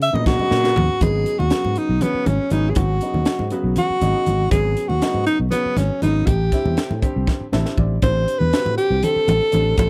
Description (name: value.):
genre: electric jazz fusion.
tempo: 240 BPM (eighths).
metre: 7/8.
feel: straight.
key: unclear.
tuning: A4 = 440 Hz.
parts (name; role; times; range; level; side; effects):
breathy alto saxophone; melody; 0.0-9.9 s; B3 to E5; -22 LUFS; equal; none.
sustaining fretless electric bass; bass; 0.0-9.9 s; G#1 to C#3; -23 LUFS; equal; subtle chorus.
crisp fusion drum kit; drums; 0.0-9.9 s; hi-hat, kick drum, snare drum, toms; -25 LUFS; equal; none.
warm baby grand piano; accompaniment; 0.1-9.9 s; C#3 to A5; -30 LUFS; equal; none.
congas; percussion; 0.2-9.9 s; none; -28 LUFS; equal; none.
room: little or no reverb.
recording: none.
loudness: -19 LUFS.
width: mono.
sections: 0.0-1.0 A section; 1.0-9.9 B section.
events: alto saxophone solo 0.0-1.0; drum fill 0.3-1.0, 7.3-8.0; grand piano fill 7.3-8.0.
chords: 0.0 C#7sus2; 1.0 G#m7; 6.3 Am7.